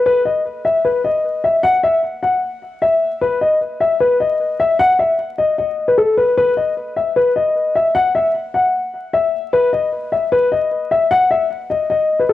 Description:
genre	hip hop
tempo	152 BPM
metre	4/4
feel	half-time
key	unclear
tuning	A4 = 437 Hz
part	dark concert grand piano	solo	0.1-12.3 s	A4 to F#5	-14 LUFS	left 2 dB	cassette tape
room	moderate spring reverb, RT60 1.5 s, small room reverb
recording	home recording on cassette, vinyl crackle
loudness	-14 LUFS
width	side -14 dB against mid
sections	0.1-12.3 A section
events	none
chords	none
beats	| 0.06 0.45 0.84 1.24 | 1.64 2.03 2.42 2.82 | 3.21 3.61 4.00 4.40 | 4.79 5.19 5.58 5.98 | 6.37 6.77 7.16 7.56 | 7.95 8.35 8.74 9.13 | 9.53 9.92 10.32 10.71 | 11.11 11.50 11.90 12.29

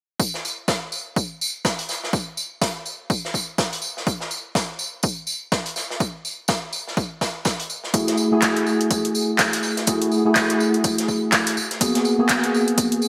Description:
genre	deep house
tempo	124 BPM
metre	4/4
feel	swing 59% on 16ths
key	F# minor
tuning	A4 = 441 Hz
part	electronic kick drum	drums	0.2-12.9 s	none	-27 LUFS	equal	overdrive, high-pass filter on kick
part	raw garage drum kit	drums	0.2-13.1 s	hi-hat, snare drum, tambourine	-28 LUFS	equal	sidechain pumping on hats, high-pass filter on hats, high-pass filter on snare, sidechain pumping on perc, high-pass filter on perc, high-pass filter on room, gated reverb
part	bright tine electric piano	stabs	7.9-13.1 s	A3 to G#4	-22 LUFS	equal	ensemble chorus, sidechain pumping, delay
part	punchy analog drum machine	drums	7.9-13.0 s	handclaps, hi-hat	-24 LUFS	equal	overdrive, gated reverb
room	wet lush hall reverb, RT60 2.0 s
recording	bright 1980s-style digital production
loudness	-22 LUFS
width	mono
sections	0.2-13.1 A section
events	none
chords	0.2 N.C.; 7.9 F#m9; 11.6 G#m9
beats	| 0.20 0.68 1.16 1.65 | 2.13 2.62 3.10 3.58 | 4.07 4.55 5.04 5.52 | 6.00 6.49 6.97 7.46 | 7.94 8.42 8.91 9.39 | 9.87 10.36 10.84 11.33 | 11.81 12.29 12.78

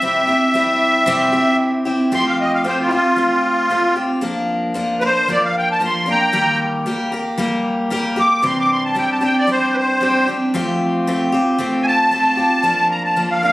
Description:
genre	rock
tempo	114 BPM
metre	4/4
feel	straight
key	F major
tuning	A4 = 440 Hz
part	musette accordion	melody	0.0-13.5 s	E4 to D6	-16 LUFS	equal	none
part	picked steel-string acoustic guitar	accompaniment	0.0-13.5 s	C3 to Bb4	-18 LUFS	equal	none
room	moderate large studio reverb, RT60 1.5 s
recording	recorded on a phone in the room, studio reverb, compression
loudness	-15 LUFS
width	side -18 dB against mid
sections	0.0-2.1 A section; 2.1-13.5 B section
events	accordion solo 2.1-13.5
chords	0.0 C; 2.1 Fadd9; 4.2 Bb/F; 6.3 Eb; 8.4 Cadd9; 10.5 Fadd9; 12.6 Bb/F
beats	| 0.02 0.55 1.07 1.60 | 2.12 2.65 3.18 3.71 | 4.23 4.76 5.29 5.81 | 6.34 6.87 7.39 7.92 | 8.44 8.97 9.49 10.02 | 10.54 11.07 11.59 12.11 | 12.64 13.16

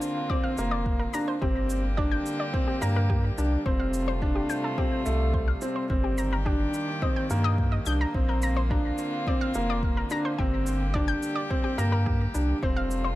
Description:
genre	piano and strings electronica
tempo	107 BPM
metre	4/4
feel	straight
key	Bb major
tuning	A4 = 442 Hz
part	dark string quartet	sustained chords	0.0-13.2 s	C3 to G4	-34 LUFS	equal	sidechain pumping
part	felt-muted upright piano	riff	0.0-13.0 s	A3 to D4	-29 LUFS	equal	tape echo
part	shaker	drums	0.0-13.0 s	none	-43 LUFS	right 1 dB	none
part	analog pluck	arpeggios	0.3-13.1 s	G4 to G6	-34 LUFS	left 2 dB	chorus, sidechain pumping, tape echo
part	electronic kick drum	drums	0.3-12.7 s	none	-28 LUFS	equal	none
part	warm sub bass	bass	0.6-13.2 s	F1 to G2	-27 LUFS	equal	sidechain pumping
room	little or no reverb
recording	none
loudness	-24 LUFS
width	side -16 dB against mid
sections	0.0-13.2 A section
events	none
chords	0.0 Bbadd9; 1.4 Gm; 3.7 Fadd9; 5.9 Eb/G; 8.1 Bbadd9; 10.4 Gm; 12.6 Fadd9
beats	0.30 0.86 | 1.42 1.98 2.54 3.10 | 3.66 4.22 4.78 5.34 | 5.90 6.46 7.03 7.59 | 8.15 8.71 9.27 9.83 | 10.39 10.95 11.51 12.07 | 12.63

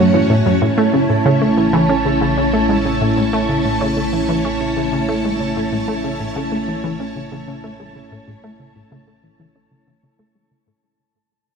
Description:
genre	ambient, sequencer-driven space music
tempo	94 BPM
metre	4/4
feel	straight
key	A major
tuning	A4 = 442 Hz
part	string machine, full ensemble	sustained chords	0.0-10.8 s	A3 to C#5	-19 LUFS	equal	ensemble chorus
part	analog pluck	riff	0.0-10.8 s	F#2 to C#4	-18 LUFS	right 1 dB	chorus, ping-pong delay
part	analog drone	bass	0.0-10.8 s	A1 to F#2	-30 LUFS	equal	chorus
part	bubbling stepped-filter texture	texture	0.6-10.8 s	A5	-26 LUFS	right 1 dB	chorus, built-in reverb
room	wet plate reverb, RT60 3.1 s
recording	none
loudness	-15 LUFS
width	side -6 dB against mid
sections	0.6-10.8 A section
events	fade-out on synth drone 0.6-10.8; fade-out 0.6-10.8; filter sweep on synth arpeggio sound 0.6-10.8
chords	0.0 F#m; 0.6 A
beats	| 0.62 1.25 1.89 2.53 | 3.17 3.81 4.45 5.08 | 5.72 6.36 7.00 7.64 | 8.28 8.91 9.55 10.19

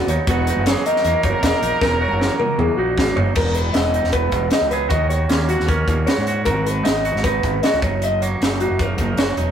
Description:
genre	math rock and midwest emo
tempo	155 BPM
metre	4/4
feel	straight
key	E lydian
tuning	A4 = 444 Hz
part	twangy electric guitar	accompaniment	0.0-9.5 s	E2 to G#4	-25 LUFS	right 4 dB	none
part	mellow electric guitar	arpeggios	0.0-9.5 s	F#4 to D#5	-21 LUFS	left 1 dB	none
part	fuzz fingered electric bass	bass	0.1-9.5 s	E1 to G#2	-22 LUFS	equal	overdrive
part	crisp fusion drum kit	drums	0.1-9.5 s	crash cymbal, hi-hat, kick drum, snare drum, toms	-22 LUFS	equal	none
part	warm trumpet	melody	0.3-3.0 s	F#4 to A#4	-24 LUFS	right 2 dB	none
room	light reverb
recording	rough rehearsal-room recording, warm saturation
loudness	-16 LUFS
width	side -8 dB against mid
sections	0.0-3.4 A section; 3.4-9.5 B section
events	drum fill 1.8-3.4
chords	0.0 Emaj7sus2; 3.4 Emaj7(no3); 4.9 D#m7; 6.5 G#m9; 7.8 F#6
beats	| 0.28 0.67 1.05 1.44 | 1.82 2.21 2.59 2.98 | 3.36 3.75 4.14 4.52 | 4.91 5.30 5.69 6.08 | 6.46 6.85 7.24 7.63 | 8.01 8.40 8.79 9.18

